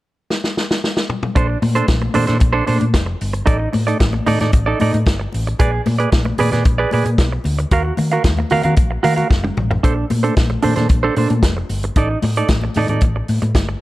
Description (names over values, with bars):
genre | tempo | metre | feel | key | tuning
disco | 113 BPM | 4/4 | straight | Bb major | A4 = 439 Hz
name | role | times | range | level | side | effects
vintage drum kit | drums | 0.3-13.7 s | hi-hat, kick drum, snare drum, toms | -18 LUFS | equal | none
semi-hollow electric guitar | accompaniment | 1.4-13.7 s | D4 to F5 | -20 LUFS | right 4 dB | none
hollow-body short-scale fingered electric bass | bass | 1.4-13.7 s | F1 to Eb3 | -19 LUFS | equal | none
congas | percussion | 1.6-13.7 s | none | -25 LUFS | left 5 dB | none
room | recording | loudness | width
little or no reverb | dark, warm production | -14 LUFS | side -17 dB against mid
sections
0.0-1.4 A section; 1.4-13.8 B section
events
drum fill 0.3-1.4, 9.3-9.8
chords
0.0 N.C.; 1.4 Bbmaj9; 3.5 Ebmaj7(b5, no3); 5.6 Bb7b9; 7.7 Ebmadd9; 9.8 Bbmaj9; 12.0 Ebmaj7(b5, no3)